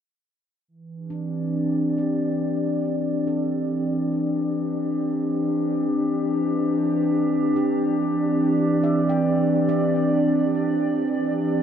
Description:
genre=ambient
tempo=70 BPM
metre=4/4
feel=straight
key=C major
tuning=A4 = 445 Hz
part: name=warbly tape-like pad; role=sustained chords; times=0.9-11.6 s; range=E3 to D5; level=-20 LUFS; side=equal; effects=chorus, built-in reverb
part: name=handpan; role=arpeggios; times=1.1-11.3 s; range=D4 to G5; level=-37 LUFS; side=right 3 dB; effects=diffuse ambient delay
room=wet cathedral reverb, RT60 5.5 s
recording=dark, warm production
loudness=-20 LUFS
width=side -8 dB against mid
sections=0.7-11.6 A section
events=fade-in on handpan 0.7-11.6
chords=0.7 Cadd9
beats=| 0.69 1.55 2.41 3.27 | 4.12 4.98 5.84 6.69 | 7.55 8.41 9.27 10.12 | 10.98

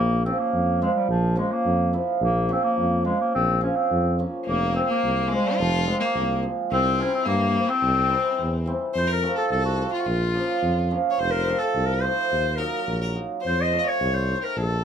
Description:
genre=klezmer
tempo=107 BPM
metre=2/4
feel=straight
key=C phrygian dominant, F phrygian dominant from 8.9 s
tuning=A4 = 440 Hz
part: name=warm clarinet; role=melody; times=0.0-14.8 s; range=F3 to Eb5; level=-24 LUFS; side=left 1 dB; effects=none
part: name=hammered dulcimer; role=accompaniment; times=0.0-14.4 s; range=E3 to F4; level=-26 LUFS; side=right 3 dB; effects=none
part: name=breathy tuba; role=bass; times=0.0-14.8 s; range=F1 to G2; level=-25 LUFS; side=equal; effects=none
part: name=clear violin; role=second line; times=4.5-14.8 s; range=Ab3 to Eb5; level=-29 LUFS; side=left 4 dB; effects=none
room=light reverb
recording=close, detailed microphones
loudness=-21 LUFS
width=side -8 dB against mid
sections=0.0-8.9 A section; 8.9-14.8 B section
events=none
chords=0.0 Bbm; 4.5 Fm; 6.7 C; 8.9 F; 10.1 Bbm; 11.2 F; 12.3 Ebm; 13.4 F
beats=0.54 | 1.10 1.66 | 2.22 2.78 | 3.34 3.90 | 4.46 5.02 | 5.58 6.14 | 6.70 7.26 | 7.82 8.38 | 8.94 9.50 | 10.06 10.63 | 11.19 11.75 | 12.31 12.88 | 13.44 14.01 | 14.57

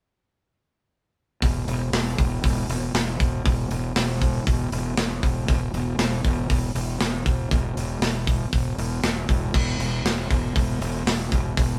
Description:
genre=hard rock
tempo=118 BPM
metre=4/4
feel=straight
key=unclear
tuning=A4 = 436 Hz
part: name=fuzz fingered electric bass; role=bass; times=1.4-11.8 s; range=E1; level=-28 LUFS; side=equal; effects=overdrive
part: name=tight metal drum kit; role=drums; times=1.4-11.7 s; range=crash cymbal, hi-hat, kick drum, snare drum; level=-26 LUFS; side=equal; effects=none
room=light reverb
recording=band playing live in one room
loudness=-24 LUFS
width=mono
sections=1.4-11.8 A section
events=none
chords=none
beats=| 1.41 1.92 2.43 2.94 | 3.45 3.96 4.47 4.97 | 5.48 5.99 6.50 7.00 | 7.51 8.02 8.53 9.03 | 9.54 10.05 10.55 11.06 | 11.57

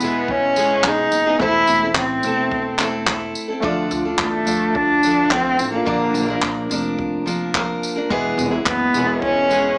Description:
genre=acoustic pop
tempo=108 BPM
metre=4/4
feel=straight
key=D minor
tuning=A4 = 441 Hz
part: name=dark cello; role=melody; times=0.0-9.8 s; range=A3 to E4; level=-17 LUFS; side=equal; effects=none
part: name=picked steel-string acoustic guitar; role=accompaniment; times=0.0-9.8 s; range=Bb2 to Bb4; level=-23 LUFS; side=equal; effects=none
part: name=warm upright piano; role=accompaniment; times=0.0-9.8 s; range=E3 to D5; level=-30 LUFS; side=equal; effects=none
part: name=upright bass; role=bass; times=0.0-9.7 s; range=E1 to E2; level=-28 LUFS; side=equal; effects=none
part: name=jazz brush drum kit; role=drums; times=0.0-9.6 s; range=handclaps, kick drum, tambourine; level=-23 LUFS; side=equal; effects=none
room=moderate studio reverb, RT60 0.6 s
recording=small speaker sound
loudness=-16 LUFS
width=side -40 dB against mid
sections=0.0-9.8 A section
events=none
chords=0.0 E; 1.4 Am/E; 3.6 Dm; 5.9 Bb; 8.1 E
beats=0.29 0.84 | 1.40 1.96 2.52 3.08 | 3.63 4.19 4.75 5.31 | 5.87 6.42 6.98 7.54 | 8.10 8.66 9.22 9.78

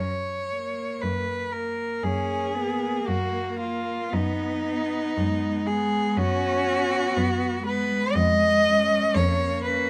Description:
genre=classical, lyrical piece for cello ensemble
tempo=56-62 BPM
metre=4/4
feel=rubato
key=F# major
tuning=A4 = 441 Hz
part: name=rich cello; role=melody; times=0.0-9.9 s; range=D#4 to D#5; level=-27 LUFS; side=equal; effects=none
part: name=clear cello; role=bass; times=0.0-9.9 s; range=E#2 to F#2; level=-31 LUFS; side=equal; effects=none
part: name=rich cello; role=second line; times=0.5-9.9 s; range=A#3 to C#4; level=-37 LUFS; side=equal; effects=none
part: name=rich cello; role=accompaniment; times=2.0-9.9 s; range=G#3 to C#4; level=-31 LUFS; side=equal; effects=none
room=light reverb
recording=none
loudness=-25 LUFS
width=mono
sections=0.0-9.9 A section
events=none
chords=0.0 F#; 4.1 G#m7/F#; 8.1 C#/E#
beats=1.02 2.04 3.08 | 4.12 5.16 6.16 7.16 | 8.15 9.15

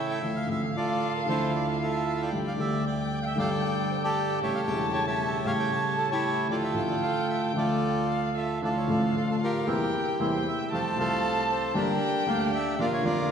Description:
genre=tango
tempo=115 BPM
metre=4/4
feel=rubato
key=D minor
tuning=A4 = 439 Hz
part: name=bandoneon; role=melody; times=0.0-13.3 s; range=D4 to A5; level=-28 LUFS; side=right 2 dB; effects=none
part: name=warm violin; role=second line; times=0.0-13.3 s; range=E5 to A5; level=-33 LUFS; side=left 2 dB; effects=none
part: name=warm upright piano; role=accompaniment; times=0.0-13.3 s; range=E1 to E5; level=-29 LUFS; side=equal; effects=none
part: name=bandoneon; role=stabs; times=8.6-13.3 s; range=E3 to G4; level=-37 LUFS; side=right 2 dB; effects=none
room=wet concert hall reverb, RT60 2.0 s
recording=recorded in a church or concert hall, vinyl crackle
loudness=-25 LUFS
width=side -7 dB against mid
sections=0.0-8.6 A section; 8.6-13.3 B section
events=none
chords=0.2 Dmadd9; 2.3 Gsus2; 4.4 A7; 6.5 Dmadd9; 9.7 C7/E; 10.7 Fadd9; 11.8 Gm; 12.8 Bb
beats=| 0.22 0.75 1.27 1.80 | 2.32 2.85 3.37 3.89 | 4.41 4.93 5.45 5.97 | 6.49 7.02 7.55 8.08 | 8.62 9.14 9.67 10.20 | 10.72 11.23 11.75 12.27 | 12.78 13.30

